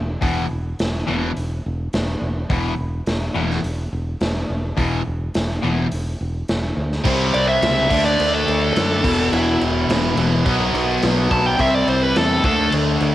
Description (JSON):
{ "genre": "hard rock", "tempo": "106 BPM", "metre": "4/4", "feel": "straight", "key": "E minor", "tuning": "A4 = 440 Hz", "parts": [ { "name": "fingered electric bass", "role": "bass", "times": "0.0-13.1 s", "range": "E1 to F#2", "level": "-24 LUFS", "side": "equal", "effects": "none" }, { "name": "overdriven electric guitar", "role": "riff", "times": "0.2-13.1 s", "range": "E2 to D4", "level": "-22 LUFS", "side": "left 4 dB", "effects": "phaser, cassette tape" }, { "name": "overdriven electric guitar", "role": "riff", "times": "0.2-13.1 s", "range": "E2 to D4", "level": "-27 LUFS", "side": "right 7 dB", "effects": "cassette tape" }, { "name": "raw garage drum kit", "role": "drums", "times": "0.2-13.1 s", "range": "crash cymbal, hi-hat, kick drum, snare drum", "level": "-24 LUFS", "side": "equal", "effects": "none" }, { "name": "distorted electric guitar", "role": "riff", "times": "7.0-13.1 s", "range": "E2 to D4", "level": "-23 LUFS", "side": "right 1 dB", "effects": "overdrive, cassette tape" }, { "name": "dark smooth lead guitar", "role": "melody", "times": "7.3-12.7 s", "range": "E4 to A5", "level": "-20 LUFS", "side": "equal", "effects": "overdrive, cassette tape, analog delay" } ], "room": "light reverb, small room ambience", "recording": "home recording on cassette", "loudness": "-17 LUFS", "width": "side -14 dB against mid", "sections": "0.0-7.1 A section; 7.1-13.1 B section", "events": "lead electric guitar solo 7.1-13.1", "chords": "0.0 E5; 7.1 C; 7.9 D; 9.0 E5; 10.5 B5; 11.6 C; 12.4 D5", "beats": "| 0.23 0.80 1.36 1.94 | 2.50 3.08 3.65 4.21 | 4.79 5.36 5.92 6.49 | 7.06 7.63 8.20 8.76 | 9.33 9.89 10.46 11.03 | 11.59 12.16 12.72" }